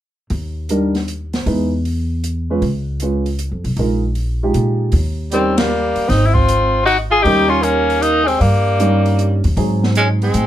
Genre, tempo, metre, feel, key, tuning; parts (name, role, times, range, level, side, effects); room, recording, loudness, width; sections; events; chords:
jazz, small-group swing and bop; 155 BPM; 3/4; swing 67% on 8ths; Eb mixolydian from 4.9 s; A4 = 440 Hz
upright bass; bass; 0.3-10.5 s; Ab1 to Bb2; -18 LUFS; equal
open jazz drum kit; drums; 0.3-10.5 s; hi-hat, kick drum, ride cymbal, snare drum; -24 LUFS; equal
warm baby grand piano; accompaniment; 0.7-10.5 s; Gb3 to B4; -19 LUFS; right 1 dB
clear tenor saxophone; melody; 5.3-10.5 s; Bb3 to Ab4; -16 LUFS; left 4 dB
clear tenor saxophone; second line; 5.3-10.5 s; G3 to F4; -20 LUFS; right 5 dB
light reverb; -14 LUFS; side -12 dB against mid
0.3-4.9 A section; 4.9-10.5 B section
band accent 5.5
0.3 Ebmaj7; 1.5 Emaj7; 2.6 Db7; 3.8 Bb7sus4; 4.9 Eb7; 6.1 Ab; 7.3 Eb7; 9.6 Ab7